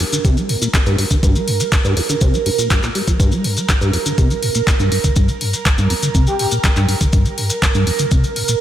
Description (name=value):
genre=acid house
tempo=122 BPM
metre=4/4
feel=straight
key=G minor pentatonic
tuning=A4 = 443 Hz
part: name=deep acid bass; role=riff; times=0.0-8.6 s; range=F2 to G3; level=-19 LUFS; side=equal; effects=lush chorus, sidechain pumping, analog delay
part: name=punchy analog drum machine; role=drums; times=0.0-8.6 s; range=handclaps, hi-hat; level=-22 LUFS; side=left 1 dB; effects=overdrive, studio reverb
part: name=ethereal airy pad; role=texture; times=0.0-8.6 s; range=Bb4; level=-24 LUFS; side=right 8 dB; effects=ensemble chorus, built-in reverb, phaser, sidechain pumping
part: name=maracas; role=percussion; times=0.1-8.6 s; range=none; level=-26 LUFS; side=left 2 dB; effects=none
part: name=electronic kick drum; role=drums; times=0.2-8.2 s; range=none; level=-16 LUFS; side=equal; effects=studio reverb
part: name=breathy flute-like synth lead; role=melody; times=6.3-6.5 s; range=G4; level=-24 LUFS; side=left 2 dB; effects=lush chorus, diffuse ambient delay
room=light reverb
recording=none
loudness=-14 LUFS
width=side -11 dB against mid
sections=0.0-8.6 A section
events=filter sweep on acid bass 0.0-8.6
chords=0.0 Gm